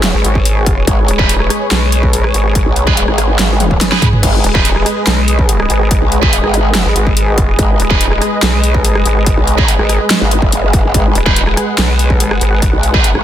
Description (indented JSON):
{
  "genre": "heavy wobble dubstep",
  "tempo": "143 BPM",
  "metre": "4/4",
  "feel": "half-time",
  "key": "G# minor",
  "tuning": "A4 = 440 Hz",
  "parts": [
    { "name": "supersaw pad", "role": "sustained chords", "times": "0.0-13.2 s", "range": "G#3 to F#5", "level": "-17 LUFS", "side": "equal", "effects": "sidechain pumping, low-pass filter" },
    { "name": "growl bass", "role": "bass", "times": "0.0-13.2 s", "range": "F#1 to B1", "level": "-14 LUFS", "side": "equal", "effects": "chorus, overdrive" },
    { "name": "dubstep drum kit", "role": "drums", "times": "0.0-13.2 s", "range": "crash cymbal, handclaps, hi-hat, rim click, snare drum, toms", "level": "-16 LUFS", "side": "equal", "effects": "studio reverb" },
    { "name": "vowel-sweep wobble bass", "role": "bass", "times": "0.1-12.7 s", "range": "D#1 to B1", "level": "-14 LUFS", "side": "equal", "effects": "chorus, overdrive" },
    { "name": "electronic kick drum", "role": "drums", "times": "0.4-13.0 s", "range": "none", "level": "-14 LUFS", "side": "equal", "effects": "distortion, studio reverb" },
    { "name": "tight distorted guitar", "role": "stabs", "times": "1.2-13.1 s", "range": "D#4 to B4", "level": "-19 LUFS", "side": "right 3 dB", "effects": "distortion, ping-pong delay" }
  ],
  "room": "light reverb",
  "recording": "dense, heavily limited modern master",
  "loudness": "-10 LUFS",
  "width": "side -11 dB against mid",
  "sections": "0.0-13.2 A section",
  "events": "drum fill 3.6-4.2",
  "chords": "0.0 G#m"
}